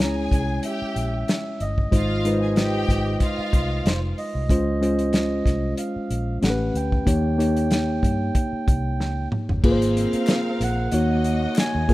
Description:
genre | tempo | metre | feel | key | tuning
lush 1970s-style soul | 93 BPM | 4/4 | swing 54% on 16ths | Ab major | A4 = 440 Hz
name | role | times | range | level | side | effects
mellow accordion | melody | 0.0-11.9 s | C5 to Bb5 | -31 LUFS | right 3 dB | none
warm studio string section | second line | 0.0-4.1, 9.6-11.9 s | Bb3 to Ab5 | -31 LUFS | right 1 dB | none
mellow reed electric piano | accompaniment | 0.0-11.9 s | Ab3 to Db5 | -24 LUFS | left 1 dB | none
vintage muted fingered electric bass | bass | 0.0-11.9 s | F1 to G2 | -26 LUFS | equal | none
warm soul drum kit | drums | 0.0-11.9 s | crash cymbal, hi-hat, kick drum, snare drum, toms | -22 LUFS | equal | none
group handclap | percussion | 10.3-11.7 s | none | -41 LUFS | left 4 dB | none
room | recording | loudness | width
light reverb, small room ambience | rough home demo mix | -20 LUFS | side -17 dB against mid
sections
0.0-9.6 A section; 9.6-11.9 B section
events
drum fill 9.0-9.6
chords
0.0 Dbm; 1.9 Ab6; 4.5 Dbmaj7; 6.4 A9; 7.1 Eb7; 9.6 Ab69; 10.9 Ebm7

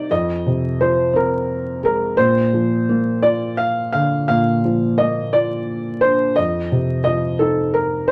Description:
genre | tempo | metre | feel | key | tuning
children's music, lullaby | 58 BPM (dotted quarters) | 6/8 | straight | unclear | A4 = 436 Hz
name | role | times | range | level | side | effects
felt-muted upright piano | melody | 0.0-8.1 s | A4 to F5 | -21 LUFS | equal | none
felt-muted upright piano | accompaniment | 0.0-8.1 s | F2 to G4 | -22 LUFS | equal | none
room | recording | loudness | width
moderate studio ambience, RT60 0.5 s | vinyl crackle | -18 LUFS | mono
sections
0.0-8.1 A section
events
none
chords
0.1 Fm; 2.2 Bbadd9; 6.4 F5

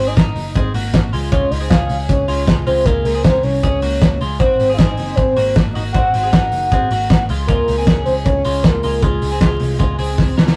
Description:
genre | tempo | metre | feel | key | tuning
jangly indie pop | 156 BPM | 4/4 | straight | unclear | A4 = 440 Hz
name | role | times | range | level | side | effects
soft octave-layered synth lead | melody | 0.0-10.2 s | Ab4 to Gb5 | -21 LUFS | equal | chorus, tremolo
twelve-string electric guitar | arpeggios | 0.0-10.6 s | Ab3 to Bb4 | -27 LUFS | equal | none
vintage muted picked electric bass | bass | 0.0-10.5 s | Gb1 to Db2 | -23 LUFS | equal | none
cloth-damped thuddy drum kit | drums | 0.2-10.6 s | hi-hat, kick drum, ride cymbal, snare drum | -19 LUFS | equal | none
room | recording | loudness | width
moderate booth ambience, RT60 0.2 s | rough rehearsal-room recording, vinyl crackle | -16 LUFS | mono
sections
0.0-10.6 A section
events
drum fill 10.2-10.6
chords
0.0 Ab7; 1.1 Db6; 4.4 Ab7; 7.3 Db6

